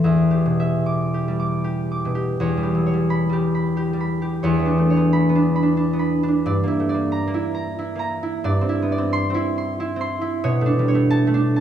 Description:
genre	classical, solo harp piece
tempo	72-93 BPM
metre	3/4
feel	rubato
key	E dorian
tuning	A4 = 440 Hz
part	concert harp	solo	0.0-11.6 s	E2 to D6	-18 LUFS	equal	none
room	wet concert hall reverb, RT60 2.2 s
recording	minimal, uncompressed stereo recording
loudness	-18 LUFS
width	side -9 dB against mid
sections	0.0-2.4 A section; 2.4-11.6 A section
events	none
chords	0.0 Em7; 2.4 Em6; 4.5 Bm9/E; 6.5 Gm6; 8.5 Dsus2/G; 10.5 Bm9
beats	| 0.04 0.86 1.65 | 2.40 3.11 3.80 | 4.47 5.14 5.81 | 6.48 7.15 7.81 | 8.48 9.15 9.81 | 10.46 11.13

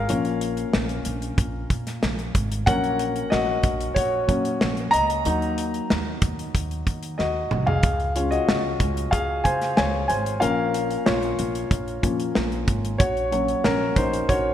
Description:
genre	piano-driven pop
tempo	93 BPM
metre	4/4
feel	straight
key	Db major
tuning	A4 = 440 Hz
part	dark concert grand piano	accompaniment	0.0-14.5 s	F3 to Bb5	-23 LUFS	left 1 dB	none
part	upright bass	bass	0.0-14.5 s	Ab1 to Eb3	-29 LUFS	equal	none
part	modern studio drum kit	drums	0.1-14.4 s	hi-hat, kick drum, snare drum, toms	-25 LUFS	equal	gated reverb
room	moderate lush hall reverb, RT60 2.6 s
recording	bright 1980s-style digital production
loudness	-21 LUFS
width	side -10 dB against mid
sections	0.0-14.5 A section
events	grand piano solo 0.0-14.5; drum fill 7.2-7.8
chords	0.0 Db; 2.7 Gb/Bb; 5.3 Ebm; 7.8 Db; 10.4 Bbm; 13.0 Gb/Bb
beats	| 0.09 0.74 1.38 2.03 | 2.67 3.32 3.96 4.61 | 5.25 5.90 6.55 7.19 | 7.84 8.48 9.13 9.77 | 10.42 11.06 11.71 12.35 | 13.00 13.64 14.29

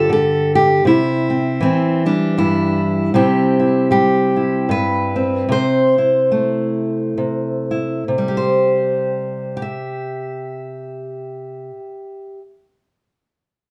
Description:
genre	folk, solo fingerstyle acoustic guitar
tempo	64-79 BPM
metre	3/4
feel	swing 58% on 8ths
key	C major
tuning	A4 = 439 Hz
part	fingerpicked steel-string acoustic guitar	solo	0.0-12.4 s	G2 to E5	-18 LUFS	equal	none
room	moderate large studio reverb, RT60 0.8 s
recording	dark, warm production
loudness	-17 LUFS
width	mono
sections	0.0-3.1 A section; 3.1-8.1 B section; 8.1-10.9 C section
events	slowing down 3.1-8.1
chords	0.0 G5; 0.9 C; 5.5 Am/C; 8.1 C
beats	0.09 | 0.85 1.61 2.37 | 3.13 3.89 4.67 | 5.47 6.29 7.16 | 8.07 9.01 9.94

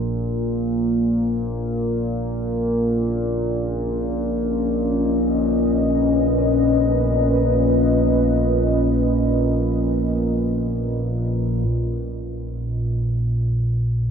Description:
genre	dark ambient drone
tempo	free time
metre	none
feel	none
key	unclear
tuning	A4 = 440 Hz
part	analog drone	drone	0.0-14.1 s	Bb1 to Bb2	-20 LUFS	equal	chorus
part	deep dark ambient pad	sustained chords	3.8-11.7 s	C#4 to D#5	-22 LUFS	left 2 dB	chorus, built-in reverb
room	wet huge ambient reverb, RT60 7.7 s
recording	dreamy mix soaked in reverb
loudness	-18 LUFS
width	side -7 dB against mid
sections	0.0-11.7 A section; 11.7-14.1 B section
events	filter sweep on synth drone 11.7-14.1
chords	0.0 N.C.; 1.7 Badd9; 11.7 N.C.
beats	free time

